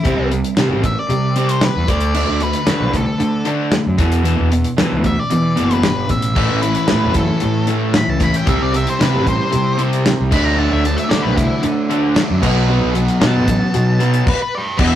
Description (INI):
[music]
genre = classic rock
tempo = 114 BPM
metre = 4/4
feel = straight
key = unclear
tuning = A4 = 440 Hz
[part]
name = octave-fuzz lead guitar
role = melody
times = 0.0-15.0 s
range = E4 to B5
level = -23 LUFS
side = left 2 dB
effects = distortion, tape echo
[part]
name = crunchy overdriven guitar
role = riff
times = 0.0-15.0 s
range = E2 to D4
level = -22 LUFS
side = right 5 dB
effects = none
[part]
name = overdriven electric guitar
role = riff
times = 0.0-15.0 s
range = E2 to D4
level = -21 LUFS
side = left 4 dB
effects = none
[part]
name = damped 70s drum kit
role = drums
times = 0.0-14.9 s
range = crash cymbal, hi-hat, kick drum, snare drum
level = -20 LUFS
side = equal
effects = none
[part]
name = fuzz fingered electric bass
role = bass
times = 0.1-15.0 s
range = F#1 to E3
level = -18 LUFS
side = equal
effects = overdrive
[part]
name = biting overdriven guitar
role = riff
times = 6.4-15.0 s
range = A2 to E4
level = -24 LUFS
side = right 1 dB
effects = none
[sound]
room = wet studio reverb, RT60 0.6 s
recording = rough rehearsal-room recording, tube saturation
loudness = -14 LUFS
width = side -11 dB against mid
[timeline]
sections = 0.0-14.8 A section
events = lead electric guitar solo 0.0-14.8; stop 14.3-14.8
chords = 0.0 C5; 1.9 D5; 4.0 E5; 6.4 A; 8.5 C; 10.3 D; 12.4 B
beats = | 0.04 0.57 1.10 1.62 | 2.15 2.67 3.20 3.73 | 4.25 4.78 5.31 5.84 | 6.36 6.89 7.42 7.95 | 8.47 9.00 9.53 10.05 | 10.58 11.11 11.64 12.16 | 12.69 13.21 13.74 14.27 | 14.79